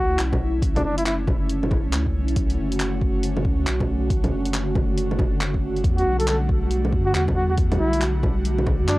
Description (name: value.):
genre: future garage.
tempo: 138 BPM.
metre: 4/4.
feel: swing 63% on 16ths.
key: B minor.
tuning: A4 = 441 Hz.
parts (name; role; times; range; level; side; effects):
trumpet with bucket mute; melody; 0.0-1.1, 6.0-9.0 s; D4 to A4; -25 LUFS; equal; cassette tape, analog delay.
airy breathy pad; sustained chords; 0.0-9.0 s; D3 to F#4; -26 LUFS; right 1 dB; chorus, sidechain pumping, cassette tape.
warm sub bass; bass; 0.0-9.0 s; F#1 to G2; -24 LUFS; equal; sidechain pumping.
deep house drum kit; drums; 0.2-9.0 s; bongos, handclaps, hi-hat; -28 LUFS; equal; overdrive.
electronic kick drum; drums; 0.3-8.8 s; none; -24 LUFS; equal; overdrive.
room: light reverb.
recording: home recording on cassette.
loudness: -20 LUFS.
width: side -19 dB against mid.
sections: 0.0-9.0 A section.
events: none.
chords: 0.0 Bm11; 5.8 Em11.